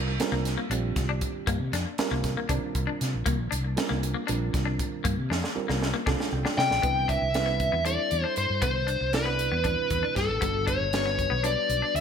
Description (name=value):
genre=electric jazz fusion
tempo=235 BPM (eighths)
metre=7/8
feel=straight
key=C lydian from 6.8 s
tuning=A4 = 440 Hz
part: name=reed electric piano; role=accompaniment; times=0.0-12.0 s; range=G3 to G5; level=-34 LUFS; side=right 7 dB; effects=lush chorus
part: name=clean electric guitar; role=stabs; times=0.0-12.0 s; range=Bb3 to D4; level=-35 LUFS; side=left 8 dB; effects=lush chorus, ping-pong delay
part: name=mellow fretless electric bass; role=bass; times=0.0-12.0 s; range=G1 to C3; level=-30 LUFS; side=equal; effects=lush chorus
part: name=crisp fusion drum kit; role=drums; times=0.2-12.0 s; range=hi-hat, kick drum, snare drum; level=-31 LUFS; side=equal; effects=gated reverb
part: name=smooth overdriven lead guitar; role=melody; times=6.6-12.0 s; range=A4 to G5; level=-26 LUFS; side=left 2 dB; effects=none
room=light reverb, small room reverb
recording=bright 1980s-style digital production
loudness=-24 LUFS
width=side -7 dB against mid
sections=0.0-6.8 A section; 6.8-12.0 B section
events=drum fill 5.3-6.8; reed electric piano fill 6.1-6.8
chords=0.0 C9sus4; 6.8 Cmaj9; 10.4 Gmaj9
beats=0.20 0.45 0.71 0.96 1.22 | 1.47 1.73 1.98 2.24 2.50 2.75 3.00 | 3.26 3.52 3.77 4.03 4.28 4.54 4.79 | 5.05 5.30 5.56 5.81 6.07 6.33 6.58 | 6.84 7.09 7.35 7.60 7.86 8.12 8.37 | 8.63 8.88 9.14 9.39 9.65 9.91 10.16 | 10.42 10.68 10.93 11.19 11.44 11.70 11.96